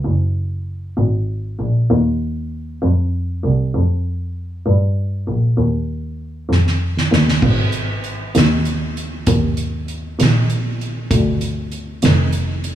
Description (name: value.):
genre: six-eight pop ballad.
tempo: 65 BPM (dotted quarters).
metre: 6/8.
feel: straight.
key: Ab major.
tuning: A4 = 440 Hz.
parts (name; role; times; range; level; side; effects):
muted double bass; bass; 0.0-12.8 s; F1 to G2; -17 LUFS; equal; none.
soft-mallet drum kit; drums; 6.5-12.8 s; crash cymbal, hi-hat, kick drum, snare drum; -19 LUFS; right 2 dB; none.
room: light reverb.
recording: small room ambience.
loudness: -16 LUFS.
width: side -11 dB against mid.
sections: 0.0-7.4 A section; 7.4-12.8 B section.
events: drum fill 6.5-7.4.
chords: none.